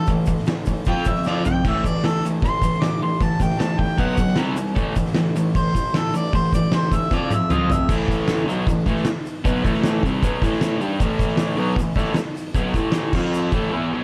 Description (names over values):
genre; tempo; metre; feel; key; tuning
garage rock duo or trio; 154 BPM; 4/4; straight; A minor; A4 = 440 Hz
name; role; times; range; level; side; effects
warm harmonica; melody; 0.0-7.9 s; A4 to D6; -28 LUFS; equal; overdrive
raw garage guitar; riff; 0.0-14.0 s; A2 to G4; -24 LUFS; equal; overdrive
oversized low-tuned drum kit; drums; 0.1-13.6 s; crash cymbal, hi-hat, kick drum, snare drum, toms; -25 LUFS; equal; none
tube shaker; percussion; 0.1-13.6 s; none; -48 LUFS; equal; none
room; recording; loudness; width
light reverb, studio reverb; cassette tape; -21 LUFS; mono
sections
0.0-7.9 A section; 7.9-14.0 B section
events
harmonica solo 0.0-7.9; drum fill 1.3-1.7, 7.1-7.9; break 13.7-14.0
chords
0.0 A5; 0.9 F5; 1.7 Am; 4.0 B5; 4.4 C5; 4.8 Am; 7.1 F5; 7.9 A5; 13.1 F5; 13.5 A5